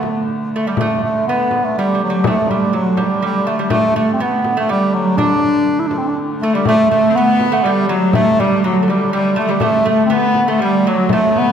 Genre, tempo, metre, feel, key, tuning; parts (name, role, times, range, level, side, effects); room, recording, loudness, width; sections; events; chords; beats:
medieval dance; 122 BPM; 3/4; straight; D major; A4 = 440 Hz
clear bass clarinet; melody; 0.0-11.5 s; F#3 to E4; -15 LUFS; right 1 dB
lute; second line; 0.0-11.5 s; F#3 to D4; -22 LUFS; right 2 dB
warm hurdy-gurdy; drone; 0.0-11.5 s; D3 to A3; -25 LUFS; left 1 dB
frame drum; percussion; 0.0-11.5 s; -24 LUFS; left 4 dB
clear viola da gamba; second line; 6.4-11.5 s; F#3 to C4; -19 LUFS; left 4 dB
wet concert hall reverb, RT60 2.1 s; recorded in a church or concert hall; -13 LUFS; side -8 dB against mid
0.0-6.7 A section; 6.7-11.5 A section
0.28 | 0.77 1.26 1.75 | 2.25 2.74 3.23 | 3.72 4.21 4.70 | 5.20 5.69 6.18 | 6.67 7.16 7.65 | 8.14 8.63 9.12 | 9.62 10.11 10.60 | 11.09